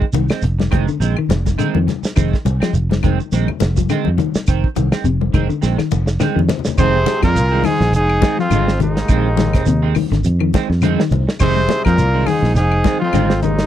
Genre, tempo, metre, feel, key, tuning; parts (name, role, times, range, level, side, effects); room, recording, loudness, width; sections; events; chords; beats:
afrobeat; 104 BPM; 4/4; swing 56% on 16ths; F dorian; A4 = 440 Hz
clean electric guitar; stabs; 0.0-13.6 s; Eb3 to C4; -23 LUFS; right 11 dB; analog chorus
warm soul drum kit; drums; 0.0-13.7 s; crash cymbal, hi-hat, kick drum, snare drum; -19 LUFS; right 1 dB
fingered electric bass; bass; 0.1-13.7 s; F1 to F2; -17 LUFS; equal
congas; percussion; 0.1-13.6 s; -25 LUFS; left 11 dB
shekere; percussion; 0.1-13.6 s; -25 LUFS; right 3 dB
clean electric guitar; arpeggios; 0.2-13.6 s; C3 to F3; -22 LUFS; left 7 dB; spring reverb
claves; percussion; 0.3-13.3 s; -31 LUFS; left 18 dB
clear trumpet; melody; 6.8-13.7 s; Eb4 to C5; -20 LUFS; right 1 dB
breathy alto saxophone; second line; 6.8-13.7 s; Ab3 to Ab4; -25 LUFS; right 4 dB
brilliant trombone section; second line; 6.8-13.7 s; Eb2 to C3; -26 LUFS; left 5 dB
light reverb; dry, close 1970s-style studio recording; -14 LUFS; side -11 dB against mid
0.0-6.8 A section; 6.8-13.7 B section
drum fill 5.6-6.8
0.0 Fm7
0.43 1.01 1.59 | 2.16 2.74 3.32 3.90 | 4.47 5.05 5.63 6.21 | 6.79 7.36 7.94 8.52 | 9.10 9.67 10.25 10.83 | 11.40 11.98 12.56 13.13